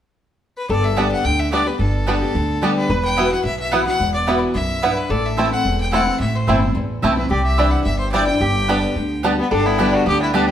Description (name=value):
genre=bluegrass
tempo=218 BPM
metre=4/4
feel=swing 53% on 8ths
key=G major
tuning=A4 = 441 Hz
part: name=clear fiddle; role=melody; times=0.6-10.5 s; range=B3 to G5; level=-23 LUFS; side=left 2 dB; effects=none
part: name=lap resonator guitar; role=second line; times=0.7-10.5 s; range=G4 to B4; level=-26 LUFS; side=left 3 dB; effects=none
part: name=picked steel-string acoustic guitar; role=accompaniment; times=0.7-10.5 s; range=E2 to G4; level=-22 LUFS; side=left 1 dB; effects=none
part: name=upright bass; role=bass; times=0.7-10.5 s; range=E1 to D2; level=-22 LUFS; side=equal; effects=none
part: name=bluegrass banjo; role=arpeggios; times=1.0-10.5 s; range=G3 to G4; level=-24 LUFS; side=right 3 dB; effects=none
part: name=mandolin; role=stabs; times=1.0-10.4 s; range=B3 to A5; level=-24 LUFS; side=right 3 dB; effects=none
room=wet stone room reverb, RT60 1.0 s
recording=band playing live in one room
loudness=-16 LUFS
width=side -10 dB against mid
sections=0.7-9.5 A section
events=none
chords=0.0 N.C.; 0.7 Gadd9; 2.9 Esus2; 5.1 Am; 7.3 Cadd9; 8.4 Gadd9